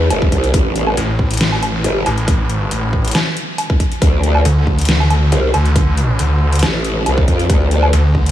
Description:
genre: heavy wobble dubstep.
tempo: 138 BPM.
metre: 4/4.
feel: swing 53% on 16ths, half-time.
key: unclear.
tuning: A4 = 440 Hz.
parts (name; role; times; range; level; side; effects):
growl bass; bass; 0.0-7.9 s; G1 to F2; -14 LUFS; equal; chorus, overdrive.
dubstep drum kit; drums; 0.1-8.3 s; hi-hat, snare drum, woodblock; -20 LUFS; equal; overdrive.
electronic kick drum; drums; 0.2-8.2 s; none; -15 LUFS; equal; overdrive.
snarling distorted saw bass; bass; 1.0-8.3 s; A1 to D2; -14 LUFS; equal; distortion, overdrive.
room: light reverb.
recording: small room ambience.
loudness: -12 LUFS.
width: side -12 dB against mid.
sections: 0.0-8.3 A section.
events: none.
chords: none.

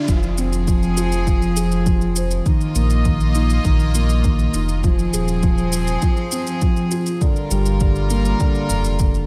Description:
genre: piano and strings electronica.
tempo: 101 BPM.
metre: 4/4.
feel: straight.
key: F dorian.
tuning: A4 = 439 Hz.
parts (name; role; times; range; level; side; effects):
felt-muted upright piano; riff; 0.0-9.3 s; D3 to C5; -24 LUFS; equal; digital delay.
rich chamber string section; sustained chords; 0.1-9.3 s; F3 to Eb5; -28 LUFS; equal; sidechain pumping.
warm sub bass; bass; 0.1-9.3 s; Eb1 to Bb1; -22 LUFS; equal; sidechain pumping, high-pass filter.
electronic kick drum; drums; 0.1-9.1 s; none; -21 LUFS; equal; none.
shaker; drums; 0.1-9.3 s; none; -31 LUFS; equal; none.
room: light reverb, studio reverb.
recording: none.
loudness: -18 LUFS.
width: mono.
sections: 0.1-9.3 A section.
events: drop 0.1-9.3.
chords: 0.1 Fm; 2.5 Bbsus4; 4.8 Fm; 7.2 Gm7.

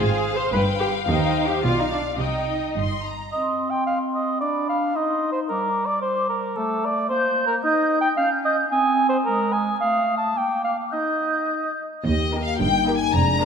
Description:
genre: quick classical-period movement for symphony orchestra.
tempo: 110 BPM.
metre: 2/4.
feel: straight.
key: C minor, Eb major from 7.6 s.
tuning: A4 = 440 Hz.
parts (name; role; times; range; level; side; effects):
rich studio violin section; melody; 0.0-3.3, 12.1-13.4 s; Eb5 to C6; -26 LUFS; left 6 dB; none.
rich studio violin section; second line; 0.0-3.1, 12.3-13.4 s; G4 to F5; -28 LUFS; left 6 dB; none.
rich studio viola section; accompaniment; 0.0-2.7, 12.3-13.4 s; Bb3 to C5; -26 LUFS; right 1 dB; none.
rich studio double bass section; bass; 0.0-3.3, 12.1-13.4 s; F1 to Eb2; -26 LUFS; right 3 dB; none.
warm studio cello section; bass; 0.0-3.3, 12.1-13.4 s; Eb2 to C3; -28 LUFS; right 2 dB; none.
clear clarinet; second line; 3.3-11.8 s; G3 to Eb4; -28 LUFS; left 1 dB; none.
dark cor anglais; second line; 3.3-11.8 s; A4 to A5; -22 LUFS; right 2 dB; none.
mellow large flute ensemble; second line; 3.3-11.8 s; B5 to G6; -27 LUFS; equal; none.
mellow French horn section; sustained chords; 12.1-13.4 s; Ab3 to G4; -25 LUFS; left 5 dB; none.
room: wet concert hall reverb, RT60 2.0 s.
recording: minimal, uncompressed stereo recording.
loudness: -20 LUFS.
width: side -6 dB against mid.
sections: 0.0-3.3 A section; 3.3-12.1 A section; 12.1-13.4 B section.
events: none.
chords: 0.0 Ab6; 0.5 G; 1.1 Cm/Eb; 1.6 Bdim; 2.2 Cm; 3.3 N.C.; 4.4 Dm6; 5.0 Cm/Eb; 5.5 G5; 6.6 D5/A; 7.1 Gm/Bb; 7.6 Eb; 8.2 Eb7/Db; 8.7 Ab/C; 9.3 Ab5; 9.8 F7/A; 10.4 Bb; 10.9 Eb; 12.6 Eb/G.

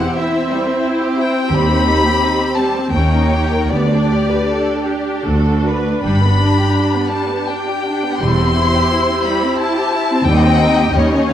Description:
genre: classical, slow romantic movement for string orchestra.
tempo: 74-90 BPM.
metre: 3/4.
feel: rubato.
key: unclear.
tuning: A4 = 440 Hz.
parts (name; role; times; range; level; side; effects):
rich chamber violin section; melody; 0.0-11.3 s; D5 to C6; -20 LUFS; left 5 dB; none.
clear symphonic violin section; second line; 0.0-11.3 s; G3 to Eb5; -20 LUFS; left 2 dB; none.
clear studio viola section; accompaniment; 0.0-11.3 s; Bb3 to G4; -20 LUFS; right 3 dB; none.
clear chamber cello section; bass; 0.0-11.3 s; D2 to G2; -18 LUFS; right 1 dB; none.
rich chamber double bass section; bass; 1.5-11.3 s; E1 to Eb2; -20 LUFS; equal; none.
room: moderate scoring stage reverb, RT60 1.5 s.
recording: vinyl crackle.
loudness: -13 LUFS.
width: side -10 dB against mid.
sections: 0.0-11.3 A section.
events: none.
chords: 0.0 C; 1.5 Cm/Eb; 2.9 Eb7; 3.7 G/D; 5.3 D; 6.0 G; 8.2 C/E; 10.3 Cm/Eb.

